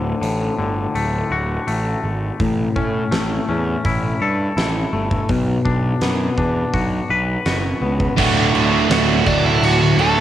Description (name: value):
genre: quiet-loud alternative rock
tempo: 83 BPM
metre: 4/4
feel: straight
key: D major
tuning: A4 = 442 Hz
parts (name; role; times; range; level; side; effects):
- twangy electric guitar; arpeggios; 0.0-8.2 s; D2 to B4; -22 LUFS; left 4 dB; tremolo
- fuzz picked electric bass; bass; 0.0-10.2 s; D1 to A2; -22 LUFS; right 1 dB; overdrive
- huge arena drum kit; drums; 0.2-10.2 s; crash cymbal, hi-hat, kick drum, snare drum; -24 LUFS; right 1 dB; none
- crunchy overdriven guitar; riff; 8.2-10.2 s; D2 to F#4; -22 LUFS; left 6 dB; phaser
- crunchy overdriven guitar; riff; 8.2-10.2 s; D2 to F#4; -19 LUFS; right 3 dB; none
- distorted electric guitar; riff; 8.2-10.2 s; D2 to F#4; -18 LUFS; right 9 dB; overdrive
- biting lead guitar; melody; 9.3-10.2 s; D4 to A5; -18 LUFS; right 1 dB; overdrive, cassette tape
room: light reverb, small room ambience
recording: home recording on cassette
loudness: -16 LUFS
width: side -12 dB against mid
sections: 0.0-8.2 A section; 8.2-10.2 B section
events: none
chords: 0.0 D; 2.4 A; 5.3 Bm; 8.2 D